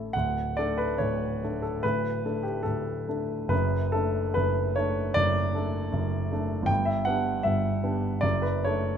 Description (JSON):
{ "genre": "classical, romantic character piece for solo piano", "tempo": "68-80 BPM", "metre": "4/4", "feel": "rubato", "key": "D major", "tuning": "A4 = 441 Hz", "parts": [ { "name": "warm grand piano", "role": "solo", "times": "0.0-9.0 s", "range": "D1 to G5", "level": "-25 LUFS", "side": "equal", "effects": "none" } ], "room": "light reverb", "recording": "close, detailed microphones", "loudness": "-25 LUFS", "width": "side -8 dB against mid", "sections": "0.0-9.0 A section", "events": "none", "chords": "0.1 D5; 3.5 D/F#; 6.7 G; 8.2 D/F#" }